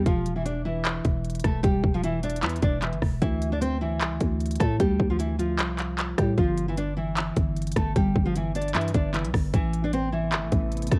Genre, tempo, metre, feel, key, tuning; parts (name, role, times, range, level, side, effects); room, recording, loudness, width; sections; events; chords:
hip hop, trap; 152 BPM; 4/4; half-time; A4 = 439 Hz
nylon-string guitar; melody; 0.0-11.0 s; E3 to D5; -30 LUFS; equal
growling 808-style bass; bass; 0.0-11.0 s; E1 to A2; -30 LUFS; equal
trap drum kit; drums; 0.1-11.0 s; handclaps, hi-hat, kick drum, rim click; -29 LUFS; equal
glassy FM pad; sustained chords; 10.3-11.0 s; C3 to B3; -38 LUFS; equal; ensemble chorus, built-in reverb
little or no reverb; worn, warbling old tape, cassette tape, warbly pitch drift; -26 LUFS; mono
0.0-11.0 A section
0.1 N.C.; 3.2 Dm7; 6.4 G7(no3); 9.5 Amadd9